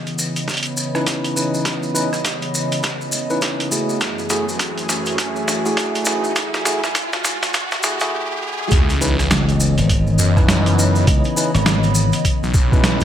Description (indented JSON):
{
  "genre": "glitch hop",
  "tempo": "102 BPM",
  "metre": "4/4",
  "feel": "swing 61% on 16ths",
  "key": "C# minor",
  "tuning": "A4 = 439 Hz",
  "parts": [
    { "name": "warm analog pad", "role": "sustained chords", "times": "0.0-13.0 s", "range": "F#2 to D#5", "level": "-27 LUFS", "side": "left 1 dB", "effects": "chorus, sidechain pumping" },
    { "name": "riser and sub drop", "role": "sound effects", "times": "1.8-11.1 s", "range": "none", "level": "-28 LUFS", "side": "right 1 dB", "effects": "none" },
    { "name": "warbly tape-like pad", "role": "texture", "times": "0.0-13.0 s", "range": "E3 to B5", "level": "-25 LUFS", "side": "left 2 dB", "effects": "chorus, built-in reverb, sidechain pumping" },
    { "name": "boom bap sampler-style drum kit", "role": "drums", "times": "0.1-13.0 s", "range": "hi-hat, rim click, snare drum", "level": "-21 LUFS", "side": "right 1 dB", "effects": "high-pass filter on hats, high-pass filter on toms, high-pass filter on snare, high-pass filter on room, gated reverb" },
    { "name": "maracas", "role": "percussion", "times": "0.1-13.0 s", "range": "none", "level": "-26 LUFS", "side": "left 1 dB", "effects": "none" },
    { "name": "electronic kick drum", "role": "drums", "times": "0.5-12.8 s", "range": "none", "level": "-17 LUFS", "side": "equal", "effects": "high-pass filter on kick, high-pass filter on room" },
    { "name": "tine electric piano", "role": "stabs", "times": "0.9-13.0 s", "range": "A3 to B4", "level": "-24 LUFS", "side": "equal", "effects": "sidechain pumping, low-pass filter, ping-pong delay" },
    { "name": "phased detuned saw bass", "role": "bass", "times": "8.7-13.0 s", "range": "B1 to F#2", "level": "-18 LUFS", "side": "equal", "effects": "phaser" },
    { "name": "glassy slap bass", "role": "bass", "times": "9.3-13.0 s", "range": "G#1 to C#2", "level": "-17 LUFS", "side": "equal", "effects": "none" }
  ],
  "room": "light reverb",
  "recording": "bright 1980s-style digital production, high-pass filter",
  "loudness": "-16 LUFS",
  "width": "side -10 dB against mid",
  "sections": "0.0-8.7 A section; 8.7-13.0 B section",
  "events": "build-up 0.0-8.7; drum fill 0.0-8.1; filter sweep on tine electric piano 0.0-8.7; riser 1.8-8.7; break 8.1-8.7; drop 8.7-13.0; impact 8.7-11.1",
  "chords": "0.0 C#m9; 4.0 F#m9; 8.7 C#m9",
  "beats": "0.48 1.07 | 1.66 2.25 2.84 3.42 | 4.01 4.60 5.19 5.78 | 6.37 6.95 7.54 8.13 | 8.72 9.31 9.90 10.48 | 11.07 11.66 12.25 12.84"
}